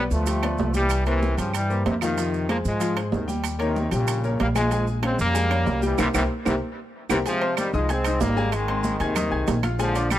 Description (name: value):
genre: latin, salsa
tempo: 189 BPM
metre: 4/4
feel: straight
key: F minor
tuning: A4 = 440 Hz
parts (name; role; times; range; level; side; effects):
- brilliant trombone section; melody; 0.0-10.2 s; G2 to C4; -26 LUFS; equal; tape echo
- bright grand piano; accompaniment; 0.0-10.2 s; F3 to Ab6; -28 LUFS; left 4 dB; none
- upright bass; bass; 0.0-10.2 s; Ab1 to Ab2; -26 LUFS; equal; none
- maracas; percussion; 0.1-10.2 s; none; -39 LUFS; right 16 dB; none
- congas; percussion; 0.3-10.2 s; none; -31 LUFS; equal; none
- timbales; percussion; 0.3-10.2 s; none; -32 LUFS; right 7 dB; none
- claves; percussion; 0.4-10.2 s; none; -34 LUFS; right 18 dB; none
room: studio reverb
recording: dry, close 1970s-style studio recording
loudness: -21 LUFS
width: side -12 dB against mid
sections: 0.0-7.3 A section; 7.3-10.2 B section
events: band accent 6.0-7.3; drum fill 6.8-7.3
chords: 0.0 G7; 0.9 C7; 2.2 Fm7; 3.4 Eb7; 4.7 Bbm9; 6.0 C7; 7.3 Fm9; 8.5 Ab